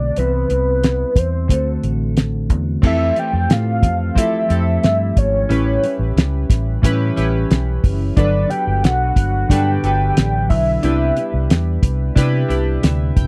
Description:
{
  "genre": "indie pop, bedroom pop",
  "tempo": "90 BPM",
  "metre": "4/4",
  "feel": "straight",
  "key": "unclear",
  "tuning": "A4 = 441 Hz",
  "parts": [
    { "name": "soft octave-layered synth lead", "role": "melody", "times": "0.0-11.5 s", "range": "B4 to G5", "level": "-22 LUFS", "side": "equal", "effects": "ensemble chorus, slapback echo" },
    { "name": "mellow electric guitar", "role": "accompaniment", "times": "0.0-13.3 s", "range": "G2 to B4", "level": "-26 LUFS", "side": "equal", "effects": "subtle chorus, warbly pitch drift" },
    { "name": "vintage muted fingered electric bass", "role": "bass", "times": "0.0-13.3 s", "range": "E1 to F3", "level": "-21 LUFS", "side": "equal", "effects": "none" },
    { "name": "cloth-damped thuddy drum kit", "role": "drums", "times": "0.2-13.3 s", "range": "crash cymbal, hi-hat, kick drum, snare drum", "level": "-18 LUFS", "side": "equal", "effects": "none" },
    { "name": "chorused retro synth keys", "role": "accompaniment", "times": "2.8-13.3 s", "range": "E3 to G5", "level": "-26 LUFS", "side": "equal", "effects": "cassette tape" }
  ],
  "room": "little or no reverb",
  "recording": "dry, close 1970s-style studio recording",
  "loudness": "-17 LUFS",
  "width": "mono",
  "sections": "0.0-2.8 A section; 2.8-13.3 B section",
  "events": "synth keys fill 12.5-13.3",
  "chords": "0.2 Cmaj7; 1.5 D7; 2.8 Fmaj7; 5.5 A7; 8.2 Gmaj7; 10.8 Cmaj7",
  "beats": "| 0.16 0.83 1.50 2.16 | 2.83 3.50 4.17 4.83 | 5.50 6.17 6.83 7.50 | 8.17 8.83 9.50 10.17 | 10.83 11.50 12.17 12.83"
}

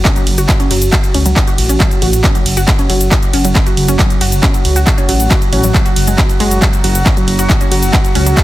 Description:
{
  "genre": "driving peak-time techno",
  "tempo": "137 BPM",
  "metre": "4/4",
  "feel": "straight",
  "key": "F# minor",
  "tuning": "A4 = 444 Hz",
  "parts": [
    { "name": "analog drone", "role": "drone", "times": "0.0-8.4 s", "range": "F#3 to F#4", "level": "-20 LUFS", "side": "right 1 dB", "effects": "chorus, sidechain pumping" },
    { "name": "wide unison pluck", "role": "riff", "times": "0.1-8.3 s", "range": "F#3 to F#4", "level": "-19 LUFS", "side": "right 1 dB", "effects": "cassette tape, sidechain pumping, dub echo" },
    { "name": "electronic kick drum", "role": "drums", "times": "0.1-8.4 s", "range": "none", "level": "-13 LUFS", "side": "equal", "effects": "none" },
    { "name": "techno drum kit", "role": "drums", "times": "0.1-8.4 s", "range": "handclaps, hi-hat, ride cymbal, shaker", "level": "-17 LUFS", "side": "right 1 dB", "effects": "sidechain pumping on hats, sidechain pumping on perc, sidechain pumping on cymbals" },
    { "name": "dark detuned saw bass", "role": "bass", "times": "0.3-8.3 s", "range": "F#1 to C#2", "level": "-14 LUFS", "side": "equal", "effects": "sidechain pumping" }
  ],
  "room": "light reverb, digital ambience",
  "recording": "dense, heavily limited modern master",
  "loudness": "-9 LUFS",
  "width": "side -15 dB against mid",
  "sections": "0.0-8.4 A section",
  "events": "none",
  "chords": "0.0 F#5",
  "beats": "0.05 0.49 0.93 | 1.36 1.80 2.24 2.68 | 3.12 3.55 3.99 4.43 | 4.87 5.31 5.74 6.18 | 6.62 7.06 7.50 7.93 | 8.37"
}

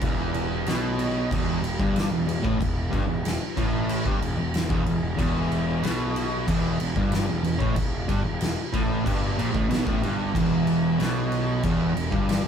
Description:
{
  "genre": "stoner and doom metal",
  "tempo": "93 BPM",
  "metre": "4/4",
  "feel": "straight",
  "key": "E minor",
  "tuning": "A4 = 441 Hz",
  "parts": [
    { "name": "fuzz guitar", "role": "riff", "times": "0.0-12.5 s", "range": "E2 to B2", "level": "-25 LUFS", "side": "right 1 dB", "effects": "distortion" },
    { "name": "fuzz picked electric bass", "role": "bass", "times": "0.0-12.5 s", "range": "E1 to B1", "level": "-30 LUFS", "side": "equal", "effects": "overdrive, tube saturation" },
    { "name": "oversized low-tuned drum kit", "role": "drums", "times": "0.0-12.4 s", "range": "crash cymbal, kick drum, snare drum", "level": "-27 LUFS", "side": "equal", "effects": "none" }
  ],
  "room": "light reverb",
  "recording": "band playing live in one room",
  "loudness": "-22 LUFS",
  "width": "side -8 dB against mid",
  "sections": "0.0-12.5 A section",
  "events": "none",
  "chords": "0.0 Em",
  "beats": "| 0.01 0.66 1.31 1.95 | 2.60 3.25 3.89 4.54 | 5.18 5.83 6.48 7.12 | 7.77 8.41 9.06 9.71 | 10.35 11.00 11.64 12.29"
}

